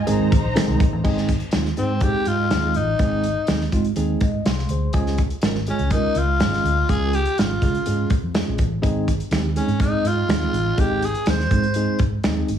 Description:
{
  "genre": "uptempo 1960s-style soul",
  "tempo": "123 BPM",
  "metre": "4/4",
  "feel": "straight",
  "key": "Ab major",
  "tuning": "A4 = 439 Hz",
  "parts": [
    { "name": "warm studio violin section", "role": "second line", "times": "0.0-1.0 s", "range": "Eb4 to Bb5", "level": "-28 LUFS", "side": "left 2 dB", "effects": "slapback echo, plate reverb" },
    { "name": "tine electric piano", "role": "accompaniment", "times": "0.1-12.5 s", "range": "Eb3 to C6", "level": "-25 LUFS", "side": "right 1 dB", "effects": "medium stereo tremolo, plate reverb" },
    { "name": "vintage muted fingered electric bass", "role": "bass", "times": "0.1-12.6 s", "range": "Ab1 to Db3", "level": "-23 LUFS", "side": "right 1 dB", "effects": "none" },
    { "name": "natural country drum kit", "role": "drums", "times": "0.1-12.6 s", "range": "crash cymbal, hi-hat, kick drum, snare drum", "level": "-23 LUFS", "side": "right 1 dB", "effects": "none" },
    { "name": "finger snap", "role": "percussion", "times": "0.6-0.7, 9.3-12.4 s", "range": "none", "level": "-33 LUFS", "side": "right 5 dB", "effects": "none" },
    { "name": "growling tenor saxophone", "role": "melody", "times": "1.8-12.0 s", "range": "C4 to C5", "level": "-23 LUFS", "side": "left 2 dB", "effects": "slapback echo, plate reverb" }
  ],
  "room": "light reverb",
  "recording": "heavily compressed radio sound, multiband compression, vinyl crackle, studio reverb",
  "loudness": "-18 LUFS",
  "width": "side -9 dB against mid",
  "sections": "0.0-1.1 A section; 1.1-12.6 B section",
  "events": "tine electric piano fill 4.0-4.9",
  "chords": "0.1 Ab; 4.9 Db; 8.8 Ab"
}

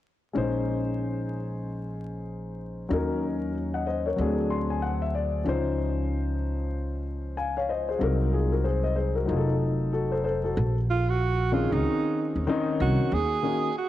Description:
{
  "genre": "hip hop, jazz-hop",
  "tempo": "94 BPM",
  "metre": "4/4",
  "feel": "swing 61% on 16ths",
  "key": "Bb minor",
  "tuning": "A4 = 441 Hz",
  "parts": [
    { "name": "dark concert grand piano", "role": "accompaniment", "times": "0.3-13.7 s", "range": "Eb3 to C6", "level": "-28 LUFS", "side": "left 3 dB", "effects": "cassette tape" },
    { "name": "upright bass", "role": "bass", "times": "0.4-13.4 s", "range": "F1 to Eb2", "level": "-28 LUFS", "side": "equal", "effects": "none" },
    { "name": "breathy alto saxophone", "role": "melody", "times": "10.9-13.9 s", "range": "Eb4 to Ab4", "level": "-28 LUFS", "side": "right 5 dB", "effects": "cassette tape, tape echo" }
  ],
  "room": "moderate lush hall reverb, RT60 2.5 s",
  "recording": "home recording on cassette, vinyl crackle",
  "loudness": "-24 LUFS",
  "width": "side -13 dB against mid",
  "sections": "0.3-10.6 A section; 10.6-13.9 B section",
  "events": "grand piano fill 4.2-5.5",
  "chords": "0.3 Bbm11; 2.9 Ebm7; 4.2 D7#11; 5.5 Dbmaj9; 8.0 Cm7b5; 9.3 F7b9; 10.6 Bbm11; 13.1 Ebm7"
}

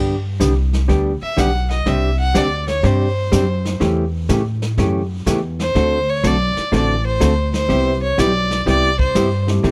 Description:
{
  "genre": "country, western swing",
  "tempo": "123 BPM",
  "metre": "4/4",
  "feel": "swing 68% on 8ths",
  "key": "unclear",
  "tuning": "A4 = 438 Hz",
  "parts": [
    { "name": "vintage hollow-body jazz guitar", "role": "accompaniment", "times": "0.0-9.7 s", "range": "C3 to A4", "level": "-22 LUFS", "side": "equal", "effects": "none" },
    { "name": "upright bass", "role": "bass", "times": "0.0-9.7 s", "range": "A1 to A2", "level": "-21 LUFS", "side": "equal", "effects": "none" },
    { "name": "vintage brush drum kit", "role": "drums", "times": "0.4-9.7 s", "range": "brushed snare drum, hi-hat, kick drum, snare drum", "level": "-26 LUFS", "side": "equal", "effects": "none" },
    { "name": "clear fiddle", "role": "second line", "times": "1.2-9.4 s", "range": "C5 to F#5", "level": "-23 LUFS", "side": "equal", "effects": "none" },
    { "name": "dark upright piano", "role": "accompaniment", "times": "7.7-9.7 s", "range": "G3 to G4", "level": "-26 LUFS", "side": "equal", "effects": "none" }
  ],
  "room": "little or no reverb",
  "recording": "none",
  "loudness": "-18 LUFS",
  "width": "mono",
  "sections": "0.0-9.7 A section",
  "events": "fiddle solo 0.0-9.7",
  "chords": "0.0 G; 1.9 Csus2; 3.8 A7; 5.7 D7; 7.7 Cmaj7"
}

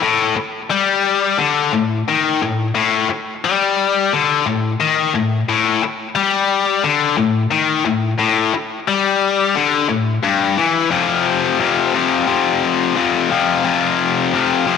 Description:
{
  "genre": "rock",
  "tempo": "88 BPM",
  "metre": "4/4",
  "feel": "straight",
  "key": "A minor",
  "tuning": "A4 = 440 Hz",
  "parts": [
    { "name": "tight distorted guitar", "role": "solo", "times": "0.0-14.8 s", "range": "F2 to G3", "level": "-14 LUFS", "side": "left 6 dB", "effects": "distortion, tape echo" }
  ],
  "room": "moderate echo chamber reverb, RT60 2.1 s",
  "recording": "none",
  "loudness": "-14 LUFS",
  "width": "side -6 dB against mid",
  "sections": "0.0-10.9 A section; 10.9-14.8 B section",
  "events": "none",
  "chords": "0.0 A5; 10.9 F5"
}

